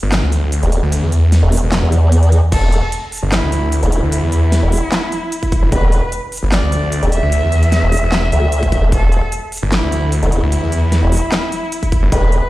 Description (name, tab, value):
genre	heavy wobble dubstep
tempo	150 BPM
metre	4/4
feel	half-time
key	E minor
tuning	A4 = 438 Hz
part	snarling distorted saw bass	bass	0.0-12.1 s	E1 to E2	-14 LUFS	equal	distortion, overdrive
part	big-room dance drum kit	drums	0.1-12.4 s	crash cymbal, handclaps, hi-hat, snare drum	-22 LUFS	equal	studio reverb
part	formant-sweep wobble bass	bass	0.6-12.4 s	E1 to E2	-13 LUFS	equal	chorus, overdrive
part	rich cello	melody	2.5-12.5 s	E4 to E5	-21 LUFS	equal	dub echo
part	electronic kick drum	drums	2.5-2.6, 5.4-5.8, 8.6-9.0, 11.8-12.2 s	none	-16 LUFS	equal	studio reverb
room	little or no reverb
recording	played on a big sound system in a bare room, large studio reverb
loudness	-13 LUFS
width	side -17 dB against mid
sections	0.0-12.5 A section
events	kick drops out 2.1-2.5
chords	0.0 E7(no3)